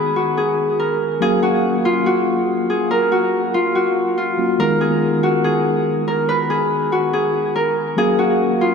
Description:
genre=hip hop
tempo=142 BPM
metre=4/4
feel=half-time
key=G# dorian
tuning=A4 = 440 Hz
part: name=Celtic harp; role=melody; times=0.0-8.7 s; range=E#4 to B4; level=-17 LUFS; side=left 1 dB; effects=tape echo
part: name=mellow tine electric piano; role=accompaniment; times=0.0-8.7 s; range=D#3 to E#5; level=-21 LUFS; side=equal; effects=medium stereo tremolo
room=wet cathedral reverb, RT60 5.3 s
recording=dreamy mix soaked in reverb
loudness=-16 LUFS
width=side -6 dB against mid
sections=0.0-8.7 A section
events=none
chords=0.0 G#m; 1.2 F#maj7; 4.6 G#m; 8.0 F#maj7

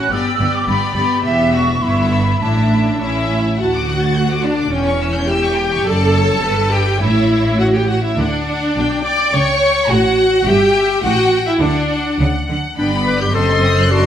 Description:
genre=quick classical-period movement for symphony orchestra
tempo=105 BPM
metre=2/4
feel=rubato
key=D major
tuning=A4 = 444 Hz
part: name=rich studio violin section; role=melody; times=0.0-14.1 s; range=B4 to A6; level=-24 LUFS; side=left 3 dB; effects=none
part: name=small flute group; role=second line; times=0.0-3.0 s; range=E5 to F#6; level=-20 LUFS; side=right 1 dB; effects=none
part: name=warm studio violin section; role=second line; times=0.0-14.1 s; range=E4 to G6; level=-22 LUFS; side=left 3 dB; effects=none
part: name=warm studio viola section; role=accompaniment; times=0.0-14.1 s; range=B3 to D5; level=-17 LUFS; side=equal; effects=none
part: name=clear studio cello section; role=bass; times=0.1-14.1 s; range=D2 to D3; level=-20 LUFS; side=right 1 dB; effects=none
part: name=rich studio double bass section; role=bass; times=0.1-14.1 s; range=E1 to D2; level=-21 LUFS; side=right 2 dB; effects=none
part: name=clear clarinet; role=second line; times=12.8-14.1 s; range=D4 to B4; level=-17 LUFS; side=left 3 dB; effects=none
room=moderate scoring stage reverb, RT60 1.4 s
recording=none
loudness=-13 LUFS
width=side -10 dB against mid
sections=0.0-3.6 A section; 3.6-12.8 B section; 12.8-14.1 A section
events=none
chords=0.1 G; 1.2 Em; 1.8 Em/G; 2.4 Asus4; 3.0 A; 3.6 D; 4.7 C#dim/E; 5.9 D/F#; 6.4 G; 7.0 A; 8.2 D; 8.8 G/B; 9.3 N.C.; 9.9 F#m/A; 10.5 Em/G; 11.0 F#m7/A; 11.6 D; 12.8 G; 13.3 F#dim7

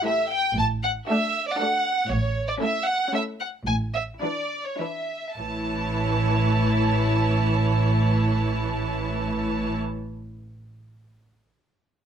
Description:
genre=quick classical-period movement for string orchestra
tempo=98-119 BPM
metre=3/4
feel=straight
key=A major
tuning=A4 = 439 Hz
part: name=muted chamber violin section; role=melody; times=0.0-9.7 s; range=C#5 to A5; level=-26 LUFS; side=right 1 dB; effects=none
part: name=muted chamber violin section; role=second line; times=0.1-9.7 s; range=E4 to C#5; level=-34 LUFS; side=right 1 dB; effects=none
part: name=muted studio viola section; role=accompaniment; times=0.1-9.7 s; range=E3 to E4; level=-28 LUFS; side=right 1 dB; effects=none
part: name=muted chamber double bass section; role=bass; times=0.6-9.7 s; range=A1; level=-26 LUFS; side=right 1 dB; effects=none
part: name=muted studio cello section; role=bass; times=0.6-9.7 s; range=A2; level=-29 LUFS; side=right 1 dB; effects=none
room=light reverb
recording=none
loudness=-22 LUFS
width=side -8 dB against mid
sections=0.0-5.4 A section; 5.4-9.0 B section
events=slowing down 1.3-5.4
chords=0.0 A5; 0.6 D/A; 2.1 A; 3.7 E5/A; 5.4 A

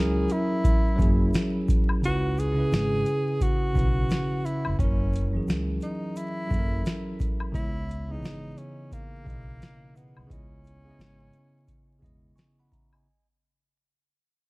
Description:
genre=lo-fi hip hop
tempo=87 BPM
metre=4/4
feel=swing 64% on 16ths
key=C# dorian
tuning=A4 = 440 Hz
part: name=breathy tenor saxophone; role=melody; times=0.0-12.4 s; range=A#3 to G#4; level=-32 LUFS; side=equal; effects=none
part: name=bell-like tine electric piano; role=accompaniment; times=0.0-13.3 s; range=B2 to C#6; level=-29 LUFS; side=equal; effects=cassette tape
part: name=upright bass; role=bass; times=0.0-12.3 s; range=E1 to C#2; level=-29 LUFS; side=equal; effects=none
part: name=booming analog drum machine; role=drums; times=0.3-12.9 s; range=hi-hat, kick drum, snare drum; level=-26 LUFS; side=equal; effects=none
part: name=egg shaker and woodblock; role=percussion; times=0.3-13.0 s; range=none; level=-38 LUFS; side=left 3 dB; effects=none
room=small room ambience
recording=dark, warm production, vinyl crackle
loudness=-23 LUFS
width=side -24 dB against mid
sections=0.0-13.1 A section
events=fade-out 0.0-13.1; break 2.0-3.4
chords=0.0 F#7; 2.0 C#m7; 4.8 F#7; 7.5 C#m7; 10.3 C#m9

